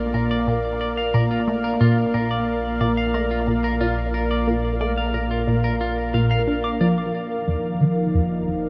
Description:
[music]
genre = ambient, sequencer-driven space music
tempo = 90 BPM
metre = 4/4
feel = straight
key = unclear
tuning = A4 = 441 Hz
[part]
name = sweeping resonant pad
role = sustained chords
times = 0.0-8.7 s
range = F3 to F5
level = -25 LUFS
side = equal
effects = chorus
[part]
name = warm sub bass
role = bass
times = 0.0-8.7 s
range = F1 to Bb1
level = -32 LUFS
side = equal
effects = none
[part]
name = clean electric guitar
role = arpeggios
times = 0.1-6.9 s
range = F4 to D6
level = -31 LUFS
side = equal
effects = delay
[part]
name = resonant blip pluck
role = riff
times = 0.1-8.7 s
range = F2 to D4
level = -26 LUFS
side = equal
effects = phaser, delay
[sound]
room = wet huge ambient reverb, RT60 8.6 s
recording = in a vast, echoing space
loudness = -22 LUFS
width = mono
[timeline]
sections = 0.0-7.1 A section; 7.1-8.7 B section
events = none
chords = 0.0 Bb; 7.1 F7sus4

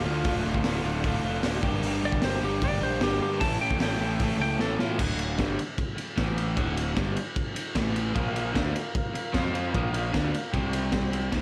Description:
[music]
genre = garage rock duo or trio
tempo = 152 BPM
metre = 4/4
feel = straight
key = D minor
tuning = A4 = 444 Hz
[part]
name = clean lap steel guitar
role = melody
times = 0.0-5.0 s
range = F4 to A5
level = -33 LUFS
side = equal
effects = none
[part]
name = combo organ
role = sustained chords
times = 0.0-5.0, 8.1-11.3 s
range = E4 to G5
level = -40 LUFS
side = equal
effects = none
[part]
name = crunchy overdriven guitar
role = riff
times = 0.0-11.4 s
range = D2 to A4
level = -32 LUFS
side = equal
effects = none
[part]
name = fuzz picked electric bass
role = bass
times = 0.0-11.4 s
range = D1 to A2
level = -34 LUFS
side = equal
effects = overdrive
[part]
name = crunchy breakbeat drum kit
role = drums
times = 0.2-11.4 s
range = crash cymbal, hi-hat, kick drum, ride cymbal, snare drum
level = -32 LUFS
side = equal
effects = none
[sound]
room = light reverb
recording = none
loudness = -27 LUFS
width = mono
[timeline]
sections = 0.0-5.0 A section; 5.0-11.3 B section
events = drum fill 4.6-5.0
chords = 0.0 Dm; 1.6 Gm; 3.4 A; 5.0 D5; 6.2 A5; 6.6 D5; 7.8 A5; 8.2 Bb5; 9.3 F5; 9.7 Bb5; 10.5 C5

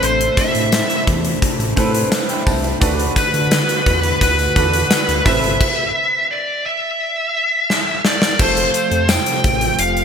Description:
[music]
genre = 1980s-style pop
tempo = 86 BPM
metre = 4/4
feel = straight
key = unclear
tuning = A4 = 440 Hz
[part]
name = high-gain lead guitar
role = melody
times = 0.0-10.0 s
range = B4 to G5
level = -18 LUFS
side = equal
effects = distortion
[part]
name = clear concert grand piano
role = accompaniment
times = 0.0-10.0 s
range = F3 to B5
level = -23 LUFS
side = right 3 dB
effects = lush chorus
[part]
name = string machine, violas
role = sustained chords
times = 0.0-10.0 s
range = C3 to B4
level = -25 LUFS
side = left 1 dB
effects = ensemble chorus
[part]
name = smooth synth bass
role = bass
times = 0.0-10.0 s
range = F1 to D3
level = -21 LUFS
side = equal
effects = none
[part]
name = gated 80s drum kit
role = drums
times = 0.0-10.0 s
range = crash cymbal, hi-hat, kick drum, snare drum, tambourine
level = -18 LUFS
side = left 1 dB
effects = gated reverb
[part]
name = tambourine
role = percussion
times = 0.0-9.6 s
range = none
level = -33 LUFS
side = left 7 dB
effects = none
[sound]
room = moderate plate reverb, RT60 2.8 s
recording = bright 1980s-style digital production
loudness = -14 LUFS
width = side -7 dB against mid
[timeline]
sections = 0.0-8.4 A section; 8.4-10.0 B section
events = stop 5.6-8.4; drum fill 7.7-8.4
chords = 0.0 Amadd9; 2.8 D6; 5.3 Amadd9; 7.0 N.C.; 8.4 F

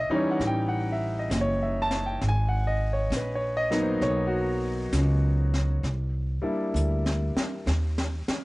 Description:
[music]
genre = jazz ballad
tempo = 66 BPM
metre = 4/4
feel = swing 66% on 8ths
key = unclear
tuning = A4 = 440 Hz
[part]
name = warm concert grand piano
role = accompaniment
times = 0.0-7.7 s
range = E3 to A5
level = -27 LUFS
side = equal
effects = cassette tape
[part]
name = upright bass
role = bass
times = 0.0-8.3 s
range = F#1 to D#2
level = -26 LUFS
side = equal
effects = none
[part]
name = jazz brush drum kit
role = drums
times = 0.4-8.4 s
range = brushed snare drum, hi-hat, snare drum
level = -32 LUFS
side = equal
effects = none
[sound]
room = little or no reverb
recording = home recording on cassette, nothing above 10.9 kHz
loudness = -24 LUFS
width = side -22 dB against mid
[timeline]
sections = 0.0-8.4 A section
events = drum fill 6.7-8.4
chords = 0.4 A7#11; 2.2 G#m9; 5.8 C9; 7.7 N.C.

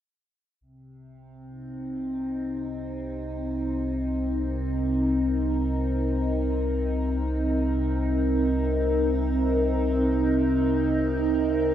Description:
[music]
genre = ambient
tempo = free time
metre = none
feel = none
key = C minor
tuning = A4 = 441 Hz
[part]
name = evolving wavetable pad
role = sustained chords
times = 1.5-11.7 s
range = C3 to Bb4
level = -25 LUFS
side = equal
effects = chorus, built-in reverb, phaser
[part]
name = round analog bass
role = bass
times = 0.6-11.7 s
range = C2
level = -29 LUFS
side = equal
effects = none
[sound]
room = wet huge ambient reverb, RT60 8.2 s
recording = none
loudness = -23 LUFS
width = side -10 dB against mid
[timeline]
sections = 0.6-11.7 A section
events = none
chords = 0.6 Cm7

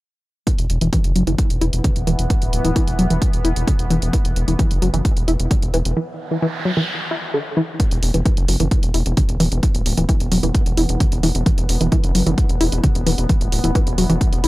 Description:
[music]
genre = driving peak-time techno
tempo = 131 BPM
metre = 4/4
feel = straight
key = unclear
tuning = A4 = 439 Hz
[part]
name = tight sequenced synth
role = riff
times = 0.5-14.5 s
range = D3 to E4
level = -22 LUFS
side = equal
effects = chorus, phaser, overdrive, sidechain pumping, analog delay
[part]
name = deep dark ambient pad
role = drone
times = 1.6-14.5 s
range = E3 to B3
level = -31 LUFS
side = equal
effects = chorus, built-in reverb, sidechain pumping
[part]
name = electronic hi-hat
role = drums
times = 0.5-14.5 s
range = none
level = -27 LUFS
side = right 1 dB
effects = none
[part]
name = electronic kick drum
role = drums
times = 0.5-14.3 s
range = none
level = -18 LUFS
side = equal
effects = none
[part]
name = gritty driven synth bass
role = bass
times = 0.6-14.5 s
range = D1 to F#1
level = -20 LUFS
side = equal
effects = sidechain pumping
[part]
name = noise sweep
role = sound effects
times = 6.1-7.8 s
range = none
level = -28 LUFS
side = right 1 dB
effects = none
[sound]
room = digital ambience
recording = dry, gritty hardware recording, transformer saturation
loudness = -16 LUFS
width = side -18 dB against mid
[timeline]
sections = 0.5-7.8 A section; 7.8-14.5 B section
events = filter sweep on analog synth bass 0.5-7.8; filter sweep on synth arpeggio sound 0.5-7.8, 7.8-14.5; break 6.0-7.8; noise sweep 6.1-7.8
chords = 0.5 E5

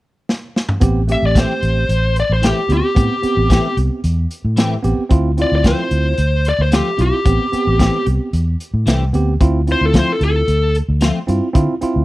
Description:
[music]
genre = straight-eighth soul blues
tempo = 112 BPM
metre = 4/4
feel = straight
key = A minor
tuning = A4 = 440 Hz
[part]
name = crunchy breakbeat drum kit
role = drums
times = 0.3-11.9 s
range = hi-hat, kick drum, snare drum, toms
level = -16 LUFS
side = equal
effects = none
[part]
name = tine electric piano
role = accompaniment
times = 0.8-12.0 s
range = A3 to G4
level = -20 LUFS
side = right 3 dB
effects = none
[part]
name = vintage muted fingered electric bass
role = bass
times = 0.8-12.0 s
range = A1 to D3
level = -16 LUFS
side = equal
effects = none
[part]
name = smooth overdriven lead guitar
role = melody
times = 1.1-10.7 s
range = G4 to E5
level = -18 LUFS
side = left 1 dB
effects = none
[part]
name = clean electric guitar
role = stabs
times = 1.3-11.2 s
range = E3 to G4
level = -22 LUFS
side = left 3 dB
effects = analog chorus
[sound]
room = studio ambience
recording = dry, close 1970s-style studio recording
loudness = -14 LUFS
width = side -18 dB against mid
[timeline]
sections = 0.8-12.0 A section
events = drum fill 0.3-0.8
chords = 0.0 N.C.; 0.8 Am7; 5.1 Dm7; 7.3 Am7; 9.4 Dm7

